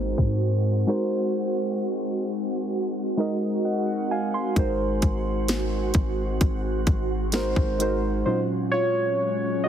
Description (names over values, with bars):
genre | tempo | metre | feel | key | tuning
contemporary R&B | 65 BPM | 4/4 | straight | unclear | A4 = 440 Hz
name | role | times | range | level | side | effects
muted felt-like synth keys | accompaniment | 0.0-9.7 s | Bb2 to C6 | -26 LUFS | right 1 dB | chorus
glassy FM pad | sustained chords | 0.0-9.7 s | Gb3 to Gb4 | -30 LUFS | right 1 dB | ensemble chorus, built-in reverb
clean 808-style bass | bass | 0.0-8.2 s | Ab1 to Ab2 | -27 LUFS | equal | none
trap drum kit | drums | 0.2-8.0 s | hi-hat, kick drum, snare drum | -24 LUFS | equal | none
room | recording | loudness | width
light reverb | heavily compressed radio sound, multiband compression, low-pass filter | -22 LUFS | side -9 dB against mid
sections
0.0-4.6 A section; 4.6-8.3 B section; 8.3-9.7 C section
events
filter sweep 0.0-4.6; break 0.9-4.6; synth keys solo 8.3-9.7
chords
0.0 Ab7; 8.3 Ab13sus4